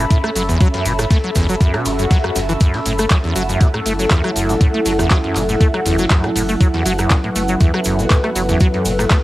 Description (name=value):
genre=acid house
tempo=120 BPM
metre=4/4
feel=swing 54% on 16ths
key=F# minor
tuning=A4 = 440 Hz
part: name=acid bass, saw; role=riff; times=0.0-9.2 s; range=E2 to A3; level=-20 LUFS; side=equal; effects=tube saturation, analog chorus, tape echo
part: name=saturated sub bass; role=bass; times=0.0-9.1 s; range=F#1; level=-24 LUFS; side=equal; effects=sidechain pumping
part: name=cabasa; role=percussion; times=0.0-9.2 s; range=none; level=-29 LUFS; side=right 2 dB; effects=none
part: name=airy breathy pad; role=texture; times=0.0-9.2 s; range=C#4 to B5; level=-23 LUFS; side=equal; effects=chorus, phaser, sidechain pumping
part: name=breakbeat sampler-style drum kit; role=drums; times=0.1-9.2 s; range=hi-hat, snare drum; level=-34 LUFS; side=equal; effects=none
part: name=electronic kick drum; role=drums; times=0.1-9.2 s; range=none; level=-13 LUFS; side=equal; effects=cassette tape
part: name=punchy analog drum machine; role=drums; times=0.1-9.2 s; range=handclaps, hi-hat, rim click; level=-23 LUFS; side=equal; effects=cassette tape
part: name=swell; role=sound effects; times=1.8-2.6 s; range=none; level=-27 LUFS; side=left 4 dB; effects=none
part: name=dark analog pad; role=sustained chords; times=3.4-9.2 s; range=F#3 to B4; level=-22 LUFS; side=equal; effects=chorus, sidechain pumping
room=light reverb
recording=home recording on cassette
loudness=-14 LUFS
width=side -17 dB against mid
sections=0.0-9.2 A section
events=swell 1.8-2.6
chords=0.0 F#m7